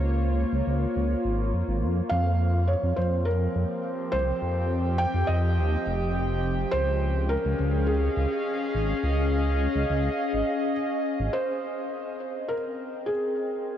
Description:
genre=IDM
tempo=104 BPM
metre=4/4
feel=straight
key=C phrygian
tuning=A4 = 440 Hz
part: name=warbly tape-like pad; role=sustained chords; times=0.0-13.8 s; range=F3 to G5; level=-29 LUFS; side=left 1 dB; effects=chorus, built-in reverb, phaser
part: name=dark detuned saw bass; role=bass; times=0.0-11.3 s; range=F1 to F2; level=-25 LUFS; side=equal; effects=none
part: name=felt-muted upright piano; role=melody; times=2.1-13.8 s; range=Ab4 to G5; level=-30 LUFS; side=equal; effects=ping-pong delay
room=moderate huge ambient reverb, RT60 7.7 s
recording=worn, warbling old tape, cassette tape, warbly pitch drift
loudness=-24 LUFS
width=side -10 dB against mid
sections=0.0-11.3 A section; 11.3-13.8 B section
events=filter sweep on ambient pad 11.3-13.8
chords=0.0 Bbmadd9; 2.1 Fsus2; 6.7 Dbadd9; 11.3 Cm7

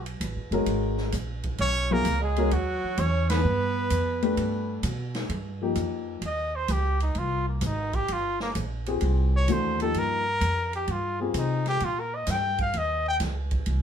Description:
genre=modal jazz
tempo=129 BPM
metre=4/4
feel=swing 68% on 8ths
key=C phrygian from 5.3 s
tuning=A4 = 440 Hz
part: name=bright trumpet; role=melody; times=0.0-13.2 s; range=Bb3 to G5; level=-28 LUFS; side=equal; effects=none
part: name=clear tenor saxophone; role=second line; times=0.0-4.8 s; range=F#3 to Db4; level=-32 LUFS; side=right 7 dB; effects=none
part: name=upright bass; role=bass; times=0.0-13.8 s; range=F#1 to C3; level=-28 LUFS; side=right 1 dB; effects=none
part: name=swinging big-band drum kit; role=drums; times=0.1-13.8 s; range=hi-hat, kick drum, ride cymbal, snare drum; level=-36 LUFS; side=right 1 dB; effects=none
part: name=dark baby grand piano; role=accompaniment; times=0.5-11.8 s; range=E3 to B4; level=-27 LUFS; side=left 4 dB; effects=none
room=moderate studio reverb, RT60 0.6 s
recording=heard from further back in the room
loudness=-24 LUFS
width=side -8 dB against mid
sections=0.0-5.3 A section; 5.3-13.8 B section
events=band accent 3.2; trumpet solo 5.3-13.8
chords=0.0 Eadd9; 3.4 G7; 5.3 Cm7

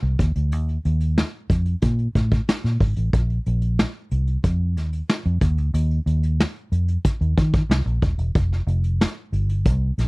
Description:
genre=polished 1980s jazz-funk pop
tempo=92 BPM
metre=4/4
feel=straight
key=unclear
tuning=A4 = 440 Hz
part: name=vintage muted fingered electric bass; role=bass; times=0.0-10.1 s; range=D#1 to Eb3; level=-20 LUFS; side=equal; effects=none
part: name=vintage brush drum kit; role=drums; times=0.2-10.1 s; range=hi-hat, kick drum, snare drum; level=-21 LUFS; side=equal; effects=none
room=little or no reverb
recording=dry, close 1970s-style studio recording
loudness=-19 LUFS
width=side -29 dB against mid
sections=0.0-10.1 A section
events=none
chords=none

